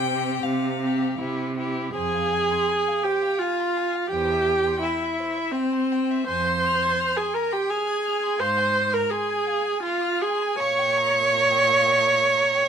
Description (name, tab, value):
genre	classical, slow romantic movement for string quartet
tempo	83 BPM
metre	3/4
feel	uneven beats, rubato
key	F minor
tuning	A4 = 441 Hz
part	rich violin	melody	0.0-12.7 s	C5 to Ab6	-33 LUFS	left 7 dB	none
part	rich violin	second line	0.0-12.7 s	G4 to Db6	-29 LUFS	left 3 dB	none
part	rich viola	accompaniment	0.0-12.7 s	C4 to Db5	-22 LUFS	right 2 dB	none
part	rich cello	bass	0.0-12.7 s	E2 to C3	-31 LUFS	right 4 dB	none
room	light reverb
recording	minimal, uncompressed stereo recording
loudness	-20 LUFS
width	side -7 dB against mid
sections	0.0-1.9 A section; 1.9-12.7 B section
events	none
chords	0.0 Csus4; 1.2 C; 1.9 Fm; 4.1 C/E; 6.3 Fm; 8.4 Fm/Ab; 10.6 Gdim/Bb